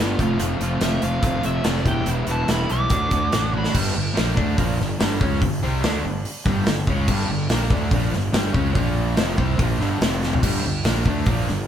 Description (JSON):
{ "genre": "blues rock power trio and southern rock", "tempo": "144 BPM", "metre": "4/4", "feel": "straight", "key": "unclear", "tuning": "A4 = 438 Hz", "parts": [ { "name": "fuzz lead guitar", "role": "melody", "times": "0.0-3.8 s", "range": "F4 to D6", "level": "-27 LUFS", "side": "right 2 dB", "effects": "distortion" }, { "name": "overdriven electric guitar", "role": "riff", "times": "0.0-11.7 s", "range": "F2 to F#4", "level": "-24 LUFS", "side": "equal", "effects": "spring reverb" }, { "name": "fuzz fingered electric bass", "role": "bass", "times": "0.0-11.7 s", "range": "E1 to D2", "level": "-24 LUFS", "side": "equal", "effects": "overdrive" }, { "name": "big rock drum kit", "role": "drums", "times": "0.2-11.5 s", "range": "crash cymbal, hi-hat, kick drum, snare drum, toms", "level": "-23 LUFS", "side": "equal", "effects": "none" } ], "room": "light reverb", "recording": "band playing live in one room", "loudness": "-19 LUFS", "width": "side -9 dB against mid", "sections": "0.0-3.7 A section; 3.7-10.4 B section; 10.4-11.7 B section", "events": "drum fill 3.5, 10.2", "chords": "0.2 F; 1.9 Em; 2.9 D; 3.7 G5; 8.8 Bb5; 9.2 G5; 10.0 F5; 10.4 G5" }